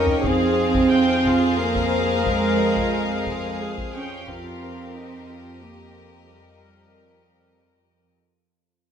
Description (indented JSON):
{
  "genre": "cinematic, suspense film score",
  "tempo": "89 BPM",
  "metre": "3/4",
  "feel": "straight",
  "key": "unclear",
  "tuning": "A4 = 440 Hz",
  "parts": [
    { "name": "warm studio violin section", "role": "melody", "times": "0.0-8.1 s", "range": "Eb5 to G5", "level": "-31 LUFS", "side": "left 6 dB", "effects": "none" },
    { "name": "rich studio violin section", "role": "second line", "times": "0.0-8.1 s", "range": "G4 to Eb5", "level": "-29 LUFS", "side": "left 4 dB", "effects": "none" },
    { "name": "warm studio viola section", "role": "accompaniment", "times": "0.0-8.0 s", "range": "Eb4 to G5", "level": "-26 LUFS", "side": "left 2 dB", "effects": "none" },
    { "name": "warm studio cello section", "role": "bass", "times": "0.0-7.6 s", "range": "G3 to Db4", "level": "-23 LUFS", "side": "right 4 dB", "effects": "none" },
    { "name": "warm studio double bass section", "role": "bass", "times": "0.0-8.1 s", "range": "F2", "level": "-32 LUFS", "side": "right 3 dB", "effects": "none" },
    { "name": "organ-like drone", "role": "drone", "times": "0.1-8.3 s", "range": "F2", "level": "-35 LUFS", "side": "right 1 dB", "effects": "ensemble chorus, built-in reverb" },
    { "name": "concert harp", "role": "texture", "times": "0.0-8.4 s", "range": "Eb4 to F6", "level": "-33 LUFS", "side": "left 4 dB", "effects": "none" },
    { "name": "taiko ensemble", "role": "drums", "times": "0.1-5.6 s", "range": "none", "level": "-30 LUFS", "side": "equal", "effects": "none" }
  ],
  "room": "wet scoring stage reverb, RT60 1.7 s",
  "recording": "none",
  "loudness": "-18 LUFS",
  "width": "side -8 dB against mid",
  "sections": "0.0-8.3 A section",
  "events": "fade-out 0.0-8.3; drum fill 0.0",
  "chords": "0.2 Fm; 4.3 Eb/F"
}